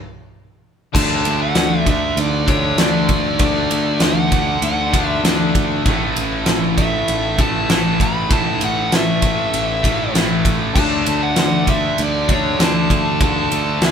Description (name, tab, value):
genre	hard rock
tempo	98 BPM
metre	4/4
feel	straight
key	unclear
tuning	A4 = 441 Hz
part	dark smooth lead guitar	melody	0.9-13.9 s	C#5 to B5	-22 LUFS	left 1 dB	overdrive
part	distorted electric guitar	riff	0.9-13.9 s	A2 to D4	-25 LUFS	left 1 dB	overdrive
part	high-gain distorted guitar	riff	0.9-13.9 s	A2 to D4	-24 LUFS	right 7 dB	distortion
part	overdriven semi-hollow guitar	riff	0.9-13.9 s	A2 to D4	-25 LUFS	left 5 dB	none
part	picked electric bass	bass	0.9-13.9 s	A1 to D2	-24 LUFS	equal	none
part	huge arena drum kit	drums	0.9-13.9 s	crash cymbal, kick drum, ride cymbal, snare drum	-18 LUFS	equal	none
room	light reverb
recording	band playing live in one room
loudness	-14 LUFS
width	side -7 dB against mid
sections	0.9-13.9 A section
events	stop 0.0-0.9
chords	0.0 N.C.; 0.9 D; 5.9 A5; 10.8 D5